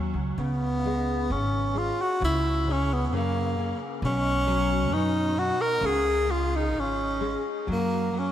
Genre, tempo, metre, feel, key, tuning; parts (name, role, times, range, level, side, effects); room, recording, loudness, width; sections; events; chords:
fado-style ballad; 66 BPM; 2/4; rubato; F# major; A4 = 440 Hz
nylon-string guitar; accompaniment; 0.0-8.3 s; B2 to B3; -32 LUFS; left 2 dB; ensemble chorus
upright bass; bass; 0.0-8.3 s; G#1 to F#2; -29 LUFS; equal
warm tenor saxophone; melody; 0.4-8.3 s; A#3 to A#4; -26 LUFS; equal; ping-pong delay
moderate lush hall reverb, RT60 2.1 s; dreamy mix soaked in reverb; -24 LUFS; side -11 dB against mid
0.0-8.3 A section
0.4 C#5; 2.2 F#5/C#; 4.0 B5; 5.8 C#5; 7.7 F#5